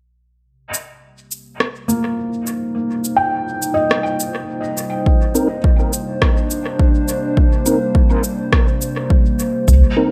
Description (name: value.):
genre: ambient dub.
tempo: 104 BPM.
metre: 4/4.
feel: swing 56% on 16ths.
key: C minor.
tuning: A4 = 440 Hz.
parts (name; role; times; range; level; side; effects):
warbly tape-like pad; sustained chords; 1.7-10.1 s; C3 to C5; -25 LUFS; equal; chorus, built-in reverb.
electronic cabasa and rim click; drums; 0.7-9.8 s; none; -24 LUFS; equal; overdrive, dub echo.
felt-muted upright piano; arpeggios; 1.9-9.7 s; Bb3 to G5; -24 LUFS; equal; low-pass filter, tape echo.
electronic kick drum; drums; 5.1-9.8 s; none; -17 LUFS; equal; overdrive.
mellow tonewheel organ; stabs; 5.3-10.1 s; C4 to Bb4; -22 LUFS; equal; chorus vibrato, stopped rotary speaker, dub echo.
warm sub bass; bass; 9.7-9.8 s; C2; -11 LUFS; equal; none.
room: light reverb.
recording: none.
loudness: -17 LUFS.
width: mono.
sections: 0.5-9.7 A section.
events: fade-in on ambient pad 0.5-9.7; filter sweep on felt piano 0.5-9.7.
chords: 0.5 Cm7.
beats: | 0.45 1.03 1.60 2.18 | 2.76 3.33 3.91 4.49 | 5.07 5.64 6.22 6.80 | 7.37 7.95 8.53 9.10 | 9.68.